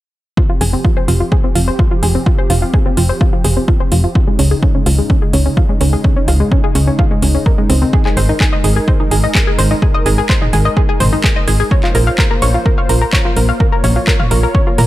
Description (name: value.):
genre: melodic techno.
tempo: 127 BPM.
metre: 4/4.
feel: straight.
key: F minor.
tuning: A4 = 441 Hz.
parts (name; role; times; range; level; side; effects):
warm analog pad; sustained chords; 0.4-14.9 s; Db3 to Db5; -22 LUFS; right 1 dB; chorus, sidechain pumping.
analog pluck; arpeggios; 0.4-14.9 s; Ab3 to F5; -18 LUFS; equal; chorus, sidechain pumping, digital delay.
electronic kick drum; drums; 0.4-14.6 s; none; -14 LUFS; equal; overdrive.
tight sequencer bass; bass; 0.6-14.9 s; F1 to Bb2; -13 LUFS; equal; sidechain pumping.
house drum kit; drums; 0.6-14.9 s; handclaps, hi-hat, toms; -20 LUFS; equal; overdrive, sidechain pumping on hats, sidechain pumping on toms.
room: light reverb.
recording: none.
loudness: -11 LUFS.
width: side -15 dB against mid.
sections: 0.4-14.9 A section.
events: filter sweep on synth arpeggio sound 0.4-14.9.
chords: 0.4 Fmadd9; 4.2 Db5; 7.9 Ab; 11.7 Bbmadd9.